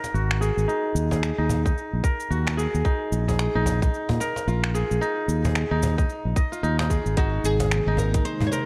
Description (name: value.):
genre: organic downtempo.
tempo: 111 BPM.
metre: 4/4.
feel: swing 60% on 16ths.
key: Eb dorian.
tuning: A4 = 443 Hz.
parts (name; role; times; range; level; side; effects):
kora; arpeggios; 0.0-8.7 s; Eb4 to Eb5; -30 LUFS; equal; vintage 12-bit sampler grit, low-pass filter, delay.
deep house drum kit; drums; 0.0-8.7 s; cabasa, finger snaps, hi-hat; -35 LUFS; equal; overdrive.
cajon; percussion; 0.0-8.7 s; none; -32 LUFS; equal; none.
fretless electric bass; bass; 0.1-8.5 s; Ab1 to Bb2; -26 LUFS; equal; sidechain pumping.
electronic kick drum; drums; 1.7-8.2 s; none; -25 LUFS; equal; overdrive.
oud; melody; 7.2-8.7 s; Gb4 to Db5; -31 LUFS; equal; delay.
airy breathy pad; sustained chords; 7.2-8.7 s; C3 to Eb4; -33 LUFS; equal; chorus, phaser, sidechain pumping.
room: moderate lush hall reverb, RT60 2.0 s.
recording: dark, warm production.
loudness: -24 LUFS.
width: mono.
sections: 0.0-8.7 A section.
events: none.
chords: 0.0 Absus2; 0.7 Ebm; 2.8 Bb5; 5.0 Eb5; 7.2 Abadd9.